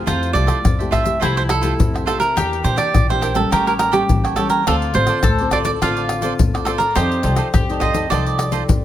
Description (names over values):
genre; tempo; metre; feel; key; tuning
samba and choro; 104 BPM; 4/4; straight; F major; A4 = 439 Hz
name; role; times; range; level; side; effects
bowl-back mandolin; second line; 0.0-8.8 s; E4 to A4; -27 LUFS; left 6 dB; none
cavaquinho; accompaniment; 0.0-8.6 s; D4 to G5; -26 LUFS; right 8 dB; none
nylon-string guitar; accompaniment; 0.0-8.8 s; A2 to D5; -25 LUFS; left 4 dB; none
upright bass; bass; 0.0-8.8 s; A1 to Bb2; -22 LUFS; equal; none
cavaquinho; melody; 0.1-8.8 s; G4 to F5; -20 LUFS; right 3 dB; none
tube shaker, surdo, pandeiro and tamborim; percussion; 0.1-8.8 s; none; -20 LUFS; left 2 dB; none
room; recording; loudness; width
light reverb; close, detailed microphones; -15 LUFS; side -12 dB against mid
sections
0.1-8.8 A section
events
none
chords
0.1 Fmaj9; 2.4 Em7b5; 3.5 A7b9; 4.7 Dm7; 7.0 F13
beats
| 0.08 0.65 1.23 1.80 | 2.38 2.95 3.52 4.10 | 4.67 5.25 5.82 6.39 | 6.97 7.54 8.12 8.69